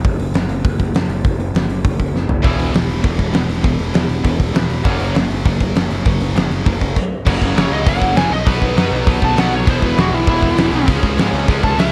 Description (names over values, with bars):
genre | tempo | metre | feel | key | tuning
punk rock | 200 BPM | 4/4 | straight | F# mixolydian | A4 = 440 Hz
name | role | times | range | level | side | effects
fuzz picked electric bass | bass | 0.0-11.9 s | E1 to G#2 | -22 LUFS | equal | overdrive
big rock drum kit | drums | 0.0-11.9 s | crash cymbal, hi-hat, kick drum, snare drum, toms | -19 LUFS | equal | none
distorted electric guitar | riff | 2.4-11.9 s | F#2 to E4 | -26 LUFS | equal | overdrive
heavy high-gain guitar | riff | 2.4-11.9 s | E2 to C#4 | -28 LUFS | equal | distortion
overdriven electric guitar | riff | 2.4-11.9 s | E2 to C#4 | -26 LUFS | equal | none
smooth overdriven lead guitar | melody | 7.6-11.9 s | E4 to A5 | -21 LUFS | equal | none
room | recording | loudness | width
little or no reverb | none | -16 LUFS | mono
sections
0.0-7.3 A section; 7.3-11.9 B section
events
drum fill 2.1-2.4; stop 7.0-7.3; lead electric guitar solo 7.3-11.9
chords
0.0 N.C.; 2.4 E5; 4.9 F#; 8.3 B; 9.7 E; 10.9 C#